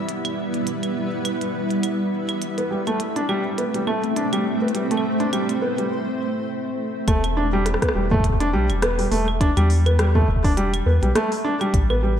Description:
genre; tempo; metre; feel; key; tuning
IDM; 103 BPM; 4/4; swing 56% on 16ths; unclear; A4 = 438 Hz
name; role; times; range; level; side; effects
granular cloud pad; sustained chords; 0.0-7.1 s; G3 to E5; -24 LUFS; equal; built-in reverb
glitchy drum kit; drums; 0.1-12.0 s; claves, hi-hat, rim click; -29 LUFS; equal; digital delay
felt-muted upright piano; arpeggios; 2.6-12.1 s; G3 to D4; -22 LUFS; right 1 dB; digital delay, slapback echo
round analog bass; bass; 7.1-12.2 s; E1 to E2; -20 LUFS; equal; none
electronic kick drum; drums; 7.1-11.9 s; none; -21 LUFS; equal; none
room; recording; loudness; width
wet concert hall reverb, RT60 1.9 s, digital ambience; big arena sound; -19 LUFS; side -9 dB against mid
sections
0.0-7.1 A section; 7.1-12.2 B section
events
break 5.9-7.1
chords
0.0 Em; 2.4 Am; 7.1 Em

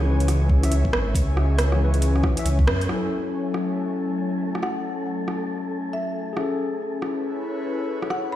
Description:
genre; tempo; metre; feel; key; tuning
future garage; 138 BPM; 4/4; swing 63% on 16ths; F# minor; A4 = 439 Hz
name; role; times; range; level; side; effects
tine electric piano; accompaniment; 0.0-8.4 s; E3 to E5; -29 LUFS; left 2 dB; sidechain pumping, dub echo
airy breathy pad; sustained chords; 0.0-8.4 s; F#3 to G#5; -29 LUFS; left 2 dB; chorus, sidechain pumping
swelling detuned saw bass; bass; 0.0-2.9 s; G#1 to F#2; -20 LUFS; equal; sidechain pumping
wind-like tuned noise texture; texture; 0.0-8.4 s; A4 to C#5; -37 LUFS; equal; built-in reverb
garage drum kit; drums; 0.2-8.2 s; hi-hat, rim click; -29 LUFS; right 1 dB; overdrive
electronic kick drum; drums; 0.5-2.7 s; none; -21 LUFS; equal; overdrive
marimba with medium mallets; melody; 4.6-8.4 s; E5 to B5; -32 LUFS; left 2 dB; tape echo
room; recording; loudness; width
moderate scoring stage reverb, RT60 1.7 s; played on a big sound system in a bare room, large studio reverb; -21 LUFS; side -12 dB against mid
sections
0.0-2.9 A section; 2.9-8.4 B section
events
band accent 2.7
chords
0.0 C#m7; 2.9 F#m7; 6.4 Amaj7

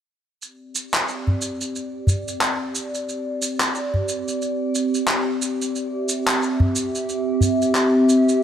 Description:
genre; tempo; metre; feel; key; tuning
organic downtempo; 90 BPM; 4/4; swing 58% on 16ths; C major; A4 = 439 Hz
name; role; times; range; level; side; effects
warbly tape-like pad; sustained chords; 1.0-8.4 s; C4 to E5; -21 LUFS; equal; chorus, built-in reverb, phaser, shimmer reverb
electronic shaker and handclaps; drums; 0.4-8.4 s; none; -24 LUFS; equal; none
udu; percussion; 1.3-7.6 s; none; -20 LUFS; equal; none
room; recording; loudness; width
wet lush hall reverb, RT60 1.7 s; none; -20 LUFS; side -9 dB against mid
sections
0.4-8.4 A section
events
filter sweep on ambient pad 0.4-8.4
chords
0.4 C

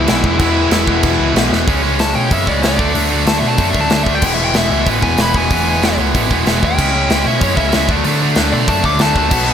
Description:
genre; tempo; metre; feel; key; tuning
punk rock; 188 BPM; 4/4; straight; E major; A4 = 440 Hz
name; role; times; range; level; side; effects
dark smooth lead guitar; melody; 0.0-9.5 s; E4 to D6; -19 LUFS; left 3 dB; overdrive
distorted electric guitar; riff; 0.0-9.5 s; E2 to D4; -20 LUFS; left 14 dB; overdrive
distorted electric guitar; riff; 0.0-9.5 s; B2 to E4; -18 LUFS; right 12 dB; overdrive
overdriven picked electric bass; bass; 0.0-9.5 s; E1 to B2; -19 LUFS; right 1 dB; none
big rock drum kit; drums; 0.1-9.4 s; crash cymbal, hi-hat, kick drum, snare drum; -17 LUFS; equal; none
room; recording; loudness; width
little or no reverb; none; -12 LUFS; side -8 dB against mid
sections
0.0-1.7 A section; 1.7-9.5 B section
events
drum fill 1.5; lead electric guitar solo 1.7-9.5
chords
0.0 E; 1.7 C#m; 2.8 D; 4.2 E; 6.8 C#m; 7.9 D

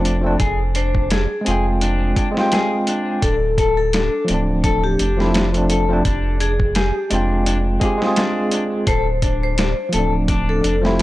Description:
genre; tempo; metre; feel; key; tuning
trip hop; 85 BPM; 4/4; swing 55% on 16ths; D minor; A4 = 441 Hz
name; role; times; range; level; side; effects
tine electric piano; accompaniment; 0.0-11.0 s; F3 to G5; -20 LUFS; right 1 dB; tremolo, tape echo
electric guitar at the edge of break-up; arpeggios; 0.0-11.0 s; D4 to A4; -25 LUFS; left 4 dB; spring reverb, tape echo
warm sub bass; bass; 0.0-11.0 s; D1 to F1; -21 LUFS; equal; tube saturation
dusty soul sampler-style drum kit; drums; 0.1-11.0 s; hi-hat, kick drum, snare drum; -21 LUFS; equal; overdrive
vibraphone with medium hard mallets; melody; 0.8-10.9 s; G4 to C5; -25 LUFS; left 2 dB; dub echo
room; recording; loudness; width
digital ambience; dry, gritty hardware recording; -16 LUFS; side -16 dB against mid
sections
0.0-11.0 A section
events
none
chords
0.4 Fmadd9; 3.2 Dm7; 6.0 Fmadd9; 8.9 Dm7

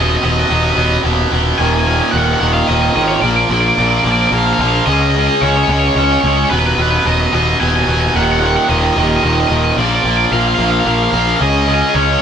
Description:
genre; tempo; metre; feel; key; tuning
post-rock; 110 BPM; 3/4; straight; Eb minor; A4 = 440 Hz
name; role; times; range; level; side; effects
crunchy overdriven guitar; melody; 0.0-12.2 s; B4 to Ab5; -17 LUFS; equal; none
tight distorted guitar; riff; 0.0-12.2 s; Eb2 to Db4; -14 LUFS; right 1 dB; distortion
fuzz picked electric bass; bass; 0.0-12.2 s; D#1 to Db2; -16 LUFS; left 1 dB; overdrive
room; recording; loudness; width
moderate stone room reverb, RT60 1.0 s; band playing live in one room; -11 LUFS; side -8 dB against mid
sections
0.0-12.2 A section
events
none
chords
0.0 B/D#; 1.6 Eb5; 3.2 Bb; 4.9 Db5; 6.5 B/D#; 8.1 Ebm; 9.8 Bb; 11.4 Db5

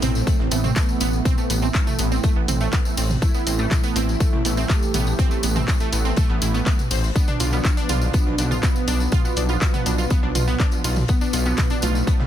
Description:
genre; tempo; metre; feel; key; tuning
melodic techno; 122 BPM; 4/4; straight; A minor; A4 = 442 Hz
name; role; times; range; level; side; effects
wide unison lead; melody; 0.0-12.3 s; A3 to G4; -30 LUFS; equal; analog chorus, vintage 12-bit sampler grit, sidechain pumping, ping-pong delay
analog pluck; arpeggios; 0.0-12.1 s; A3 to C5; -28 LUFS; right 4 dB; chorus, sidechain pumping, digital delay
sync-sweep polysynth; stabs; 0.0-12.3 s; A2 to B3; -29 LUFS; right 3 dB; analog chorus, sidechain pumping, digital delay
fat analog bass; bass; 0.0-12.3 s; A1 to B1; -22 LUFS; left 1 dB; tube saturation, sidechain pumping
punchy analog drum machine; drums; 0.0-12.3 s; handclaps, hi-hat, toms; -28 LUFS; right 1 dB; studio reverb
warm soul drum kit; drums; 0.0-12.3 s; hi-hat, snare drum; -39 LUFS; left 5 dB; none
tambourine; percussion; 0.0-12.2 s; none; -32 LUFS; left 5 dB; none
electronic kick drum; drums; 0.3-12.2 s; none; -20 LUFS; left 1 dB; studio reverb
room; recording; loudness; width
studio ambience; dense, heavily limited modern master; -18 LUFS; side -11 dB against mid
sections
0.0-12.3 A section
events
none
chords
0.0 Amadd9; 7.2 Bdim

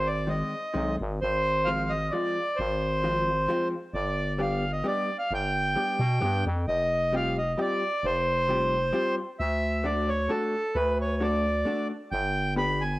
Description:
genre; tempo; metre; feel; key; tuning
musette waltz; 132 BPM; 3/4; swing 53% on 8ths; unclear; A4 = 440 Hz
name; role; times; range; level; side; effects
accordion; melody; 0.0-13.0 s; A4 to B5; -27 LUFS; right 1 dB; cassette tape
growling FM bass; bass; 0.0-13.0 s; F1 to B2; -29 LUFS; equal; none
vintage hollow-body jazz guitar; accompaniment; 0.3-12.8 s; Eb3 to B4; -31 LUFS; left 2 dB; none
room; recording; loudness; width
wet spring reverb, RT60 1.6 s, small room ambience; home recording on cassette; -25 LUFS; side -18 dB against mid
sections
0.0-13.0 A section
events
none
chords
0.0 Ab; 1.2 Fm/Ab; 3.9 G; 6.7 Fsus2; 9.4 D; 12.1 G

